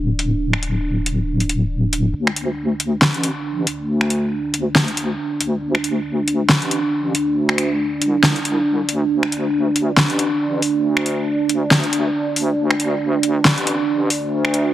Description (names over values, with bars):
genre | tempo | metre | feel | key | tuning
deep dubstep | 138 BPM | 4/4 | swing 57% on 16ths, half-time | unclear | A4 = 441 Hz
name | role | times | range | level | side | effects
dark analog pad | sustained chords | 0.0-14.7 s | D4 | -21 LUFS | right 2 dB | chorus
deep soft wobble bass | bass | 0.0-14.7 s | D1 to D2 | -22 LUFS | left 1 dB | chorus, high-pass filter
deep house drum kit | drums | 0.2-14.6 s | finger snaps, hi-hat, snare drum | -19 LUFS | equal | overdrive
room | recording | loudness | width
light reverb | heavily compressed radio sound, multiband compression, low-pass filter | -16 LUFS | side -13 dB against mid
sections
0.0-2.1 A section; 2.1-14.7 B section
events
build-up 2.1-14.7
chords
0.0 N.C.; 2.1 D5